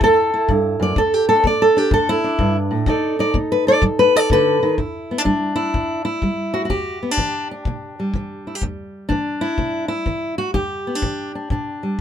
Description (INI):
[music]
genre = acoustic country blues, solo or duo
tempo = 125 BPM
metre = 4/4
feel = swing 66% on 8ths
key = E minor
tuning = A4 = 441 Hz
[part]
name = fingerpicked steel-string acoustic guitar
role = melody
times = 0.0-12.0 s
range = E2 to D5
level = -17 LUFS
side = equal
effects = none
[part]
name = kick drum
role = drums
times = 0.0-12.0 s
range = none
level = -24 LUFS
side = left 2 dB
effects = none
[sound]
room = light reverb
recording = minimal, uncompressed stereo recording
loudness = -17 LUFS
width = side -9 dB against mid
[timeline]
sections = 0.0-4.8 A section; 4.8-12.0 B section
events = steel-string acoustic guitar solo 0.0-4.8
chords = 0.0 A5; 1.0 Em7; 2.9 B7#9; 4.8 Em7